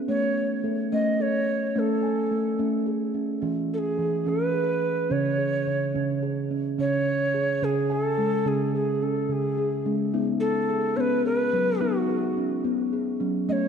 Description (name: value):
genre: world meditative, meditative tuned percussion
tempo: 72 BPM (dotted quarters)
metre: 6/8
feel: straight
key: C# minor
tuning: A4 = 442 Hz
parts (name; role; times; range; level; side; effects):
- steel tongue drum; arpeggios; 0.0-13.7 s; C#3 to G#5; -25 LUFS; equal; none
- mellow hollow Native American-style cedar flute; melody; 0.1-13.7 s; F#4 to D#5; -26 LUFS; equal; tape echo
room: wet echo chamber reverb, RT60 1.7 s, small room reverb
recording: dark, warm production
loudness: -23 LUFS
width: side -7 dB against mid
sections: 0.0-6.8 A section; 6.8-13.7 B section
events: none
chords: 0.1 A; 3.4 E; 5.1 C#5; 10.1 B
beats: | 0.09 0.93 | 1.76 2.60 | 3.44 4.27 | 5.11 5.95 | 6.78 7.62 | 8.46 9.30 | 10.14 10.97 | 11.81 12.65 | 13.49